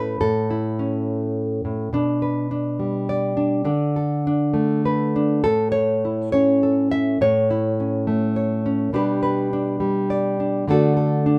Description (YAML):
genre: folk, solo fingerstyle acoustic guitar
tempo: 69 BPM (dotted quarters)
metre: 6/8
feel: rubato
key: A mixolydian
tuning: A4 = 441 Hz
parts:
  - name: nylon-string guitar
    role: solo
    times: 0.0-11.4 s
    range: A2 to E5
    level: -21 LUFS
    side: equal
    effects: none
room: light reverb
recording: none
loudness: -21 LUFS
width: mono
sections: 0.0-11.4 A section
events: none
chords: 0.0 A; 1.9 G/B; 3.7 D5; 5.4 A; 8.9 G/B; 10.7 D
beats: | 0.21 1.07 | 1.94 2.80 | 3.67 4.55 | 5.44 6.33 | 7.21 8.07 | 8.94 9.81 | 10.68